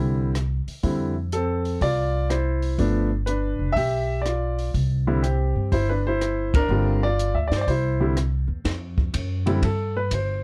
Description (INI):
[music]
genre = jazz piano trio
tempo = 123 BPM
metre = 4/4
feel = swing 67% on 8ths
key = C major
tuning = A4 = 441 Hz
[part]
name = warm concert grand piano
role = melody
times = 0.0-10.4 s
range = D3 to E5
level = -27 LUFS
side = equal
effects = none
[part]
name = upright bass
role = bass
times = 0.0-10.4 s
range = F1 to G2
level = -26 LUFS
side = equal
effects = none
[part]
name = compact cocktail drum kit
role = drums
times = 0.4-10.3 s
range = hi-hat, kick drum, ride cymbal, rim click, snare drum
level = -28 LUFS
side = equal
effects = none
[sound]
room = little or no reverb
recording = dark, warm production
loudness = -24 LUFS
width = mono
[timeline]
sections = 0.0-8.6 A section; 8.6-10.4 B section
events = band accent 6.4; grand piano solo 8.6-10.4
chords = 0.0 Cadd9; 0.8 Fmaj7; 2.8 G7; 4.7 Cadd9; 6.7 G5; 7.7 C; 8.6 Fsus2